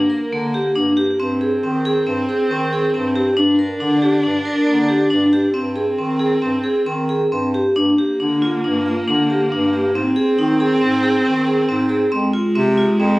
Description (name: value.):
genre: contemporary instrumental, chamber music in an uneven meter.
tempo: 138 BPM.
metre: 5/4.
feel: straight.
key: G phrygian.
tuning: A4 = 441 Hz.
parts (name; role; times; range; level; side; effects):
warm viola; second line; 0.0-13.2 s; Ab3 to D4; -20 LUFS; equal; none.
vibraphone with hard mallets; arpeggios; 0.0-13.2 s; Bb3 to Bb4; -18 LUFS; equal; none.
bright bass clarinet; bass; 0.0-13.2 s; F2 to Eb3; -24 LUFS; equal; none.
room: light reverb.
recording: recorded on a phone in the room, studio ambience.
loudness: -15 LUFS.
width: side -20 dB against mid.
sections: 0.0-7.8 A section; 7.8-13.2 B section.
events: none.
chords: 0.0 Gm; 1.2 Ab/G; 3.4 Gm; 5.5 Ab/G; 7.8 Gm7; 10.0 Ab; 12.1 Fm.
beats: 0.32 0.76 | 1.20 1.63 2.07 2.51 2.94 | 3.37 3.81 4.24 4.67 5.11 | 5.54 5.98 6.42 6.86 7.31 | 7.76 8.20 8.64 9.08 9.52 | 9.95 10.39 10.82 11.26 11.69 | 12.12 12.56 12.99.